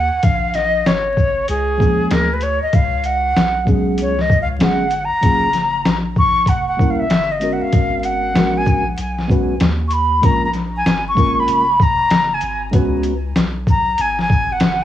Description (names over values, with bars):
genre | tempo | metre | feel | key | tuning
hip hop, jazz-hop | 96 BPM | 4/4 | swing 64% on 16ths | unclear | A4 = 440 Hz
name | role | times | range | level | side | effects
breathy concert flute | melody | 0.0-14.8 s | G#4 to C#6 | -17 LUFS | equal | cassette tape, tape echo
soft dub sub bass | bass | 0.0-14.8 s | E#1 to D#2 | -24 LUFS | left 1 dB | none
boom bap sampler-style drum kit | drums | 0.2-14.8 s | hi-hat, kick drum, shaker, snare drum | -17 LUFS | left 1 dB | cassette tape
mellow tine electric piano | accompaniment | 1.8-13.1 s | E#3 to B4 | -20 LUFS | right 1 dB | medium stereo tremolo, cassette tape
room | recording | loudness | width
light reverb | home recording on cassette, vinyl crackle, studio ambience | -14 LUFS | side -11 dB against mid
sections
0.0-14.8 A section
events
flute solo 0.0-14.8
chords
0.2 A#m7; 2.7 C#7sus4; 5.2 F#maj9; 7.1 Gdim; 7.7 G#m11; 10.2 A#m7; 12.7 C#7sus4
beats
| 0.23 0.85 1.48 2.10 | 2.73 3.35 3.98 4.60 | 5.23 5.85 6.48 7.10 | 7.73 8.35 8.98 9.60 | 10.23 10.85 11.48 12.10 | 12.73 13.35 13.98 14.60